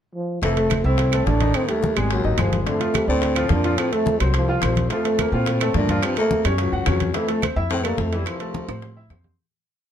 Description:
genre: Afro-Cuban jazz.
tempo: 214 BPM.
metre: 4/4.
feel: straight.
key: F major.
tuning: A4 = 439 Hz.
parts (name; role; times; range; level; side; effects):
breathy trombone; melody; 0.1-9.1 s; F3 to D4; -24 LUFS; right 2 dB; plate reverb.
bright baritone saxophone; second line; 0.4-9.1 s; C2 to Bb2; -28 LUFS; left 8 dB; none.
bright upright piano; accompaniment; 0.4-9.3 s; D3 to Gb5; -26 LUFS; left 1 dB; none.
upright bass; bass; 0.4-9.4 s; F1 to Bb2; -22 LUFS; equal; none.
bongos; percussion; 0.4-9.4 s; none; -33 LUFS; left 7 dB; none.
congas; percussion; 0.4-9.4 s; none; -28 LUFS; left 3 dB; none.
timbales; percussion; 0.4-9.3 s; none; -31 LUFS; right 10 dB; none.
claves; percussion; 0.7-9.2 s; none; -34 LUFS; right 8 dB; none.
room: light reverb.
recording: dark, warm production.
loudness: -18 LUFS.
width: side -9 dB against mid.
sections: 0.0-0.4 pickup bar; 0.4-9.4 A section.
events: fade-out 7.6-9.4; drum fill 8.5-9.4.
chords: 0.4 Fmaj7; 1.5 Abmaj7; 2.1 Ab7; 2.7 Gm9; 3.8 F; 4.9 Bbmaj9; 6.0 A7b9b13; 6.6 Gb5; 7.1 Fmaj7.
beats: 0.15 | 0.43 0.71 0.99 1.27 | 1.55 1.83 2.11 2.39 | 2.67 2.95 3.23 3.51 | 3.79 4.07 4.35 4.63 | 4.91 5.19 5.47 5.75 | 6.03 6.31 6.59 6.87 | 7.15 7.43 7.71 7.99 | 8.27 8.55 8.83 9.11.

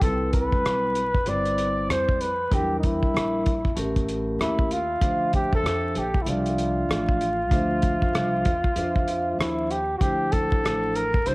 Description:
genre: hip hop, jazz-hop.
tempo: 96 BPM.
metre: 4/4.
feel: swing 62% on 16ths.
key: D minor.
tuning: A4 = 439 Hz.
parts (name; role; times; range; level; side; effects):
breathy flugelhorn; melody; 0.0-11.3 s; Eb4 to D5; -25 LUFS; equal; cassette tape, analog delay.
vibraphone with medium mallets; accompaniment; 0.0-11.3 s; F3 to E5; -29 LUFS; equal; cassette tape.
upright bass; bass; 0.0-11.3 s; G1 to F2; -31 LUFS; equal; none.
cloth-damped thuddy drum kit; drums; 0.0-11.3 s; hi-hat, kick drum, rim click; -25 LUFS; equal; none.
room: light reverb, small room ambience.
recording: home recording on cassette, vinyl crackle.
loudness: -21 LUFS.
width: side -23 dB against mid.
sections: 0.0-10.0 A section; 10.0-11.3 A section.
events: none.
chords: 0.0 Cmaj7; 2.5 Em7b5; 3.8 A7b9; 5.0 Dm9.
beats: | 0.01 0.64 1.26 1.89 | 2.51 3.14 3.76 4.39 | 5.01 5.64 6.26 6.89 | 7.51 8.14 8.76 9.39 | 10.01 10.64 11.26.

